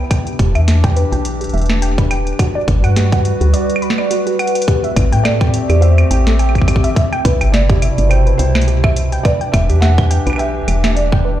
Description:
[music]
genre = IDM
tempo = 105 BPM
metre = 4/4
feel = swing 56% on 16ths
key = A dorian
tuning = A4 = 440 Hz
[part]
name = warbly tape-like pad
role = sustained chords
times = 0.0-11.4 s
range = B2 to B4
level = -21 LUFS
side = left 1 dB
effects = chorus, built-in reverb
[part]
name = warbly dusty pluck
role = arpeggios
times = 0.0-11.3 s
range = F#4 to B5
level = -22 LUFS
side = right 2 dB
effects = chorus, digital delay
[part]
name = woody FM bass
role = bass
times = 0.0-11.4 s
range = E1 to A2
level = -14 LUFS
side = equal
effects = tube saturation
[part]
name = booming analog drum machine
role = drums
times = 0.1-11.1 s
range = claves, hi-hat, snare drum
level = -22 LUFS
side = right 1 dB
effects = ping-pong delay
[part]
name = electronic kick drum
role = drums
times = 0.1-11.2 s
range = none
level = -16 LUFS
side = equal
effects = none
[part]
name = felt-muted upright piano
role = melody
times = 5.2-11.4 s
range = C5 to F#5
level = -22 LUFS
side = right 2 dB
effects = digital delay
[sound]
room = light reverb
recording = played on a big sound system in a bare room, large studio reverb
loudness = -12 LUFS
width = side -12 dB against mid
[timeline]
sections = 0.0-4.7 A section; 4.7-11.4 B section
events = drum fill 4.4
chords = 0.1 Em7; 2.4 Gmaj7; 4.7 Am7; 7.0 Cmaj7; 9.2 Em7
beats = | 0.11 0.68 1.25 1.82 | 2.39 2.96 3.54 4.11 | 4.68 5.25 5.82 6.39 | 6.96 7.54 8.11 8.68 | 9.25 9.82 10.39 10.96

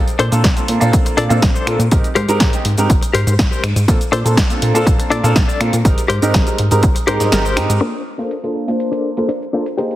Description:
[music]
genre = filtered disco house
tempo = 122 BPM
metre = 4/4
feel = straight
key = Bb major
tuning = A4 = 439 Hz
[part]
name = clear concert grand piano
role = accompaniment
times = 0.0-9.9 s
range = Ab3 to A5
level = -19 LUFS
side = right 1 dB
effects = phaser, sidechain pumping, low-pass filter
[part]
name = plucky analog bass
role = bass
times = 0.0-7.8 s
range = Ab1 to Bb2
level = -17 LUFS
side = equal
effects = sidechain pumping, low-pass filter
[part]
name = punchy analog drum machine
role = drums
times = 0.1-10.0 s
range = cabasa, finger snaps, hi-hat, snare drum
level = -21 LUFS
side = equal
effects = sidechain pumping on hats, low-pass filter on hats, sidechain pumping on perc, low-pass filter on perc, low-pass filter on snare, low-pass filter on room
[part]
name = direct-recorded clean electric guitar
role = riff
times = 0.2-10.0 s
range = D4 to D5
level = -20 LUFS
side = left 4 dB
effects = tremolo, sidechain pumping, low-pass filter
[part]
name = electronic kick drum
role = drums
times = 0.4-6.9 s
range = none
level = -15 LUFS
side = equal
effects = none
[sound]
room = light reverb, digital ambience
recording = heavily compressed radio sound, multiband compression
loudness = -13 LUFS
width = side -14 dB against mid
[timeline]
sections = 0.0-7.8 A section; 7.8-10.0 B section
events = kick drops out 7.3-7.8; filter sweep 7.8-10.0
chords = 0.0 Bbmaj9; 1.9 Abmaj9; 3.9 Bbmaj9; 5.8 Abmaj9; 7.8 Bbmaj9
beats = 0.44 0.93 1.42 | 1.92 2.41 2.90 3.39 | 3.88 4.37 4.87 5.36 | 5.85 6.34 6.83 7.33 | 7.82 8.31 8.80 9.29 | 9.78

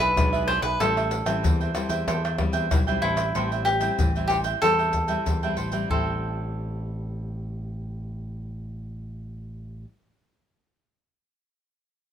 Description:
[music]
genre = samba and choro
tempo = 94 BPM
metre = 4/4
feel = straight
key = A minor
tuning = A4 = 440 Hz
[part]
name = cavaquinho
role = melody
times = 0.0-9.8 s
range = E4 to C5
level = -24 LUFS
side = equal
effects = none
[part]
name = cavaquinho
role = accompaniment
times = 0.0-9.9 s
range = D4 to G5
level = -30 LUFS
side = right 5 dB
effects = none
[part]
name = nylon-string guitar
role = accompaniment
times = 0.0-9.9 s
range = A2 to F4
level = -34 LUFS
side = left 4 dB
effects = none
[part]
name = picked electric bass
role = bass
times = 0.0-9.8 s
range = A1 to E2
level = -30 LUFS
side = equal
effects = none
[part]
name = maracas, surdo, pandeiro and tamborim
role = percussion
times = 0.2-6.0 s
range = none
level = -27 LUFS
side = left 1 dB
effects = none
[sound]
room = moderate studio reverb, RT60 0.8 s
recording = minimal, uncompressed stereo recording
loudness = -22 LUFS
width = side -9 dB against mid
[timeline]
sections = 0.0-3.4 A section; 3.4-5.9 B section; 5.9-8.5 C section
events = none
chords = 0.0 E7b9; 0.8 Am7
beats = 0.17 | 0.80 1.44 2.08 2.71 | 3.35 3.99 4.63 5.27 | 5.91 6.54 7.18 7.83

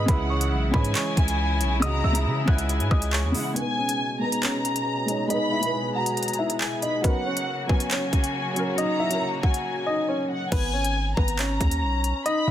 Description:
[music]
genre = hip hop, drill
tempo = 138 BPM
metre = 4/4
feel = half-time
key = unclear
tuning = A4 = 439 Hz
[part]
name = dark baby grand piano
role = melody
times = 0.0-12.5 s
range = B3 to F#6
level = -29 LUFS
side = left 1 dB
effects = low-pass filter
[part]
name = dark studio violin section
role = second line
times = 0.0-12.5 s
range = F#5 to B5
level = -29 LUFS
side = left 1 dB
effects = ping-pong delay
[part]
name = felt-muted upright piano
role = accompaniment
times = 0.0-10.5 s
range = C#3 to C#5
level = -30 LUFS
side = right 2 dB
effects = low-pass filter
[part]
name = clear symphonic string section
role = sustained chords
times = 0.0-10.5 s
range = B2 to G#4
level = -32 LUFS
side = left 2 dB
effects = low-pass filter
[part]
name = hard-hitting 808-style bass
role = bass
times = 0.0-3.3, 10.5-12.5 s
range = G#1 to C#3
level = -25 LUFS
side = equal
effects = none
[part]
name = drill drum kit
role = drums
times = 0.1-12.4 s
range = crash cymbal, handclaps, hi-hat, kick drum, rim click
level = -25 LUFS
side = equal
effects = none
[sound]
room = moderate recital hall reverb, RT60 1.5 s, small room ambience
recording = dense, heavily limited modern master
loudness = -22 LUFS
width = side -11 dB against mid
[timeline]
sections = 0.0-3.6 A section; 3.6-10.5 B section; 10.5-12.5 C section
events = filter sweep 3.6-10.5; break 9.6-10.5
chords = 0.1 C#m; 7.0 F#; 10.5 G#m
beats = | 0.08 0.52 0.95 1.39 | 1.82 2.26 2.69 3.13 | 3.56 4.00 4.43 4.87 | 5.30 5.74 6.17 6.61 | 7.04 7.48 7.91 8.35 | 8.78 9.21 9.65 10.08 | 10.52 10.95 11.39 11.82 | 12.26

